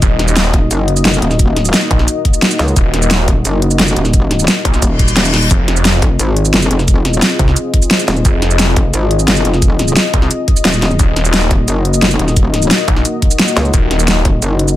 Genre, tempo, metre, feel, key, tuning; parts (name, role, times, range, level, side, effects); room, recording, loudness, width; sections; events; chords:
dark technical drum and bass; 175 BPM; 4/4; straight; A4 = 440 Hz
dark analog pad; sustained chords; 0.0-14.8 s; Bb3 to Eb5; -19 LUFS; left 2 dB; chorus, sidechain pumping
snarling distorted saw bass; bass; 0.0-14.2 s; Eb1 to C2; -14 LUFS; equal; distortion, tube saturation, sidechain pumping
dubstep drum kit; drums; 0.0-14.7 s; hi-hat, shaker, snare drum; -14 LUFS; equal; overdrive
electronic kick drum; drums; 0.0-14.3 s; -13 LUFS; equal
metallic wobble bass; bass; 0.5-14.8 s; Eb1 to Db2; -14 LUFS; equal; chorus
reverse cymbal; sound effects; 4.9-5.5 s; -19 LUFS; left 4 dB
little or no reverb; -10 LUFS; side -14 dB against mid
0.0-14.8 A section
reverse cymbal 4.9-5.5
0.0 Ebm; 5.5 Fm7; 11.0 Ebm